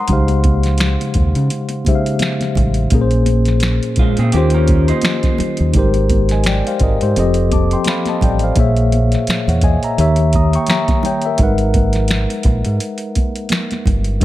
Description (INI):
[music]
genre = R&B, neo-soul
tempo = 85 BPM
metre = 4/4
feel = swing 57% on 16ths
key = unclear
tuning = A4 = 440 Hz
[part]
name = tine electric piano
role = accompaniment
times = 0.0-14.2 s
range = A#2 to D#6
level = -17 LUFS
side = left 2 dB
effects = medium stereo tremolo
[part]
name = deep dub fingered electric bass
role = bass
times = 0.1-14.2 s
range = F1 to C#3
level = -16 LUFS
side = equal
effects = none
[part]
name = soft vintage rhythm box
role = drums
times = 0.1-14.2 s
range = finger snaps, hi-hat, kick drum, snare drum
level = -18 LUFS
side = equal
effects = none
[part]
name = congas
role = percussion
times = 0.1-14.2 s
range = none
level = -27 LUFS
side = right 4 dB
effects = none
[part]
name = electric guitar through a small old amp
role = second line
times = 4.0-5.7 s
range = G#3 to B#4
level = -22 LUFS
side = right 4 dB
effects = none
[sound]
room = light reverb, digital ambience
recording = dark, warm production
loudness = -13 LUFS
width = side -15 dB against mid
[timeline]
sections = 0.0-14.2 A section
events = none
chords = 0.1 C#maj9#11; 2.9 A#m9; 4.3 D#13; 5.7 G#maj7; 7.2 F7; 8.6 A#m7b5; 10.0 D#7b9; 11.4 G#m9